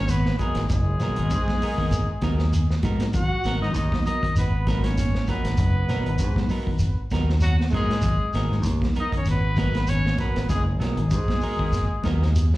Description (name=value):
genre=afrobeat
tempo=98 BPM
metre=4/4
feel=swing 55% on 16ths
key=G# dorian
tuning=A4 = 440 Hz
part: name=clear trumpet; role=melody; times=0.0-12.6 s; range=F#4 to F#5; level=-30 LUFS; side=left 1 dB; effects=slapback echo
part: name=brilliant trombone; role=second line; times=0.0-12.6 s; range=F#3 to F#4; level=-34 LUFS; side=right 1 dB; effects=slapback echo
part: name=fingered electric bass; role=bass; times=0.0-12.5 s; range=F#1 to G#2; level=-23 LUFS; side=equal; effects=none
part: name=mellow electric guitar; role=arpeggios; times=0.1-12.6 s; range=D#3 to F#3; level=-32 LUFS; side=left 4 dB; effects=slapback echo
part: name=vintage drum kit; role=drums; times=0.1-12.6 s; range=hi-hat, kick drum, snare drum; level=-27 LUFS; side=equal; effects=none
part: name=congas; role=percussion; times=0.1-12.6 s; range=none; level=-33 LUFS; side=right 2 dB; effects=none
part: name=shekere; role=percussion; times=0.1-12.5 s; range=none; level=-27 LUFS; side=equal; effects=slapback echo
part: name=clean electric guitar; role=stabs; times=0.4-12.2 s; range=F#3 to A#4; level=-34 LUFS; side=right 4 dB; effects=slapback echo
room=small room ambience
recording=live gig heard through the venue's PA, club reverb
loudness=-21 LUFS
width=side -17 dB against mid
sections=0.0-12.6 A section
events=none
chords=0.0 G#m9